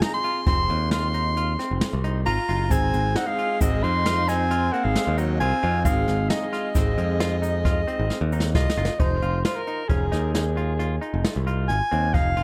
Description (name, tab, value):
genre	progressive instrumental, band music in an uneven meter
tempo	134 BPM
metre	7/4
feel	straight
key	F minor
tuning	A4 = 440 Hz
part	breathy soprano saxophone	melody	0.0-12.4 s	Ab4 to C6	-29 LUFS	equal	analog delay
part	tine electric piano	accompaniment	0.0-9.0 s	C4 to Ab4	-38 LUFS	equal	none
part	semi-hollow electric guitar	arpeggios	0.0-12.4 s	C4 to F4	-35 LUFS	equal	analog delay
part	jazz brush drum kit	drums	0.0-12.4 s	hi-hat, kick drum, snare drum	-28 LUFS	equal	analog delay
part	modern bright picked electric bass	bass	0.5-12.4 s	F1 to F2	-27 LUFS	equal	none
part	raspy alto saxophone	second line	2.3-8.5 s	Gb3 to F4	-33 LUFS	equal	analog delay
part	egg shaker	percussion	2.7-8.5 s	none	-43 LUFS	equal	none
room	moderate spring reverb, RT60 1.9 s, studio reverb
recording	echo-heavy mix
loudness	-23 LUFS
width	mono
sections	0.0-9.0 A section; 9.0-12.4 B section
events	drum fill 8.1-9.0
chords	0.0 Fm; 2.7 Ab; 9.0 Fm